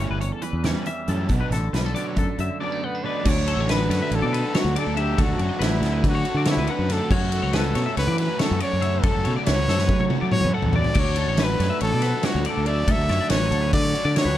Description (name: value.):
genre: math rock and midwest emo.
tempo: 281 BPM (eighths).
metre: 9/8.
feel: straight.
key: D major.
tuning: A4 = 440 Hz.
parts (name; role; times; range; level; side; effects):
twangy electric guitar; accompaniment; 0.0-5.2 s; E2 to D4; -33 LUFS; right 6 dB; spring reverb.
clean electric guitar; arpeggios; 0.0-14.4 s; A4 to F#5; -31 LUFS; left 7 dB; analog chorus.
overdriven semi-hollow guitar; riff; 0.0-14.4 s; F#2 to F#4; -29 LUFS; right 1 dB; none.
growling fingered electric bass; bass; 0.0-14.4 s; G1 to F#3; -24 LUFS; equal; overdrive.
loose indie drum kit; drums; 0.2-14.3 s; crash cymbal, hi-hat, kick drum, ride cymbal, snare drum, toms; -25 LUFS; equal; none.
clear trumpet; melody; 2.6-14.4 s; E4 to E5; -26 LUFS; equal; none.
room: light reverb.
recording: dark, warm production.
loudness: -20 LUFS.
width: side -12 dB against mid.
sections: 0.0-3.3 A section; 3.3-14.4 B section.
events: break 2.6-3.3; drum fill 9.7-11.0.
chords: 0.0 A7; 1.3 Bm7; 3.3 D; 7.1 F#m7; 11.0 D.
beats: 0.00 0.22 0.43 0.65 0.87 1.09 | 1.31 1.52 1.74 1.96 2.17 2.39 2.61 2.83 3.04 | 3.26 3.47 3.69 3.90 4.12 4.33 4.55 4.76 4.98 | 5.19 5.41 5.62 5.83 6.05 6.26 6.47 6.69 6.90 | 7.12 7.33 7.54 7.76 7.97 8.19 8.40 8.61 8.83 | 9.04 9.25 9.47 9.68 9.89 10.11 10.32 10.54 10.75 | 10.96 11.18 11.39 11.60 11.82 12.03 12.24 12.46 12.67 | 12.88 13.10 13.31 13.52 13.73 13.95 14.16 14.37.